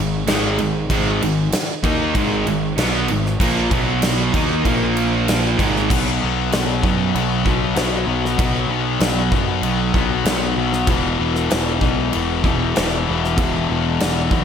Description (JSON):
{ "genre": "hard rock", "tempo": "96 BPM", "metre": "4/4", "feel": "straight", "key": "unclear", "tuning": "A4 = 438 Hz", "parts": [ { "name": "distorted electric guitar", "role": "riff", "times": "0.0-14.4 s", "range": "E2 to D#4", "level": "-22 LUFS", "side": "left 9 dB", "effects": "distortion" }, { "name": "distorted electric guitar", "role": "riff", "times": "0.0-5.9 s", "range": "G#2 to D#4", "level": "-22 LUFS", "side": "right 7 dB", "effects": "overdrive" }, { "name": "overdriven semi-hollow guitar", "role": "riff", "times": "0.0-14.4 s", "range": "E2 to D#4", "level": "-24 LUFS", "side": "right 2 dB", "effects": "slapback echo" }, { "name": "fuzz picked electric bass", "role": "bass", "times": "0.0-14.4 s", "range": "E1 to F#2", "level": "-24 LUFS", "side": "equal", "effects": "overdrive" }, { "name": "gated 80s drum kit", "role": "drums", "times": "0.3-14.4 s", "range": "crash cymbal, kick drum, snare drum", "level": "-22 LUFS", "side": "equal", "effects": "none" } ], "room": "moderate scoring stage reverb, RT60 1.9 s", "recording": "big arena sound", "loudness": "-16 LUFS", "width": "side -8 dB against mid", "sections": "0.0-5.9 A section; 5.9-14.4 B section", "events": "none", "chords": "0.0 G#m; 3.7 B5; 4.3 D#5; 4.7 A#5; 5.6 G#5; 5.9 B5; 10.9 E5" }